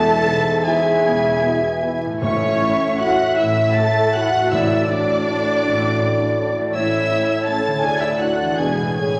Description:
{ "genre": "classical", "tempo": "144-177 BPM", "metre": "3/4", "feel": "rubato", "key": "A major", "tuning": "A4 = 439 Hz", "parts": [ { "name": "warm studio violin section", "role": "melody", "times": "0.0-9.2 s", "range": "C#6 to A6", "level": "-30 LUFS", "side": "equal", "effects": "none" }, { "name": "dark clarinet", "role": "second line", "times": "0.0-9.2 s", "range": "D4 to F#4", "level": "-35 LUFS", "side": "equal", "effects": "none" }, { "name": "hollow concert flute", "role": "second line", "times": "0.0-9.2 s", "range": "C#5 to E5", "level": "-23 LUFS", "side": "equal", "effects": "none" }, { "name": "rich studio violin section", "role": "second line", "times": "0.0-9.2 s", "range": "C#5 to A5", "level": "-26 LUFS", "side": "equal", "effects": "none" }, { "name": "mellow bassoon", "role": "accompaniment", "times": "0.0-9.2 s", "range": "G#2 to E3", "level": "-30 LUFS", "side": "equal", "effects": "none" }, { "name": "warm studio viola section", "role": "accompaniment", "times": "0.0-9.2 s", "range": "C#4 to A4", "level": "-29 LUFS", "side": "equal", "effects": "none" }, { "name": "warm French horn section", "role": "sustained chords", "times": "0.0-9.2 s", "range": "C#4 to A4", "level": "-30 LUFS", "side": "equal", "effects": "none" }, { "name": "concert harp", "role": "arpeggios", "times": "0.0-9.2 s", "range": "A2 to D5", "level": "-33 LUFS", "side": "equal", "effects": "none" }, { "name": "rich studio cello section", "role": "bass", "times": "0.0-9.2 s", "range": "D2 to A2", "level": "-30 LUFS", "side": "equal", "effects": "none" }, { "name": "rich studio double bass section", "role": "bass", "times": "0.0-9.2 s", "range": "E1 to D2", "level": "-33 LUFS", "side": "equal", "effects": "none" }, { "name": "warm trombone section", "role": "sustained chords", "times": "0.3-8.7 s", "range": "A2 to E4", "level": "-32 LUFS", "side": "equal", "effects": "none" }, { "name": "timpani", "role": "percussion", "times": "2.2-5.0 s", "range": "A2", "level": "-31 LUFS", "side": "equal", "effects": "none" } ], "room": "wet scoring stage reverb, RT60 1.8 s", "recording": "tube saturation, vinyl crackle", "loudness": "-18 LUFS", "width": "mono", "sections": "0.0-9.2 A section", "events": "none", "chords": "0.0 E; 2.2 A; 4.5 D/A; 6.7 A; 7.8 D; 8.6 E7" }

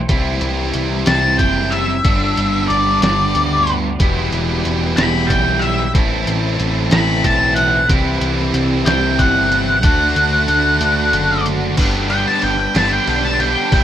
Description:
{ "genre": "indie rock", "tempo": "62 BPM (dotted quarters)", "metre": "6/8", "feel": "straight", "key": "G major", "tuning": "A4 = 440 Hz", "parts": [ { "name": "fuzz guitar", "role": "riff", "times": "0.0-13.8 s", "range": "E2 to G4", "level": "-22 LUFS", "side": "left 6 dB", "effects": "distortion" }, { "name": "high-gain distorted guitar", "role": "riff", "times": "0.0-13.8 s", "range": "G2 to F#4", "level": "-20 LUFS", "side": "right 6 dB", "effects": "distortion, analog chorus, tape echo" }, { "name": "growling picked electric bass", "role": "bass", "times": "0.0-13.8 s", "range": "E1 to D2", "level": "-21 LUFS", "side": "equal", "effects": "overdrive" }, { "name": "lo-fi sampler-style drum kit", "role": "drums", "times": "0.1-13.8 s", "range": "crash cymbal, hi-hat, kick drum, ride cymbal, snare drum", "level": "-18 LUFS", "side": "equal", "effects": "none" }, { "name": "octave-fuzz lead guitar", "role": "melody", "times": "1.1-13.8 s", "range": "D5 to B5", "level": "-17 LUFS", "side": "left 1 dB", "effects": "distortion, plate reverb" }, { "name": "tonewheel organ", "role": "sustained chords", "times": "4.0-13.8 s", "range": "F#4 to C6", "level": "-28 LUFS", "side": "equal", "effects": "slow rotary speaker, plate reverb" } ], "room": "light reverb", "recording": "rough home demo mix", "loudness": "-13 LUFS", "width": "side -10 dB against mid", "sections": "0.0-11.8 A section; 11.8-13.8 B section", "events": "break 10.8-11.8; lead electric guitar solo 11.8-13.8", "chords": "0.1 C; 2.0 G6; 4.0 Em; 5.9 Am; 7.9 C6; 9.8 D; 11.8 G" }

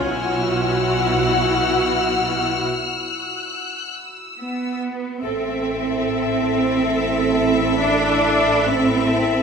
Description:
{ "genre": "cinematic, suspense film score", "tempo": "free time", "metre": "none", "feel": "none", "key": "A minor from 5.2 s", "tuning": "A4 = 440 Hz", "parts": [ { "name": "warm symphonic violin section", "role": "melody", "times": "0.0-9.4 s", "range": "E5 to F#5", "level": "-25 LUFS", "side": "left 4 dB", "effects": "none" }, { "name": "warm symphonic viola section", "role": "accompaniment", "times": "0.0-9.4 s", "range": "E4 to A4", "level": "-24 LUFS", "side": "equal", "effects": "none" }, { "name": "icy glass pad", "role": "sustained chords", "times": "0.0-9.4 s", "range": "E4 to A5", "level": "-25 LUFS", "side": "left 2 dB", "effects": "chorus, built-in reverb" }, { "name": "warm studio cello section", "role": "bass", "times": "0.0-9.4 s", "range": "B2 to D4", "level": "-21 LUFS", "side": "right 3 dB", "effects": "none" }, { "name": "warm symphonic double bass section", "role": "bass", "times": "0.0-9.4 s", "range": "A1 to B1", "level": "-29 LUFS", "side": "right 4 dB", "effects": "none" }, { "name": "warm symphonic violin section", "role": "texture", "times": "0.1-4.8 s", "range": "E6 to E#6", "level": "-26 LUFS", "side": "left 4 dB", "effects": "none" } ], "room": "moderate scoring stage reverb, RT60 1.6 s", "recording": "none", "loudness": "-18 LUFS", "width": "side -6 dB against mid", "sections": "0.0-5.2 A section; 5.2-9.4 B section", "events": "break 2.7-5.2", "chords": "0.1 Bsus4; 5.2 Am" }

